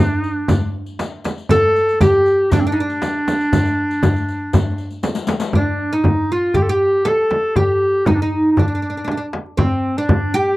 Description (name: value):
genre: Arabic maqam ensemble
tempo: 119 BPM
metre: 4/4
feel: straight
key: D maqam kurd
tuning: A4 = 440 Hz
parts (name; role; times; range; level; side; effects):
- clear clarinet; melody; 0.0-10.6 s; C4 to A4; -18 LUFS; equal; none
- oud; second line; 0.0-10.6 s; C4 to A4; -22 LUFS; right 2 dB; none
- darbuka; percussion; 0.2-10.2 s; none; -21 LUFS; left 1 dB; none
- riq; percussion; 0.2-5.5 s; none; -28 LUFS; left 6 dB; none
- frame drum; percussion; 0.5-10.2 s; none; -20 LUFS; right 2 dB; none
room: light reverb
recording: dry, close 1970s-style studio recording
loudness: -15 LUFS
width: side -18 dB against mid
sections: 0.0-5.5 A section; 5.5-10.6 B section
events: drum fill 5.0-5.5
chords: none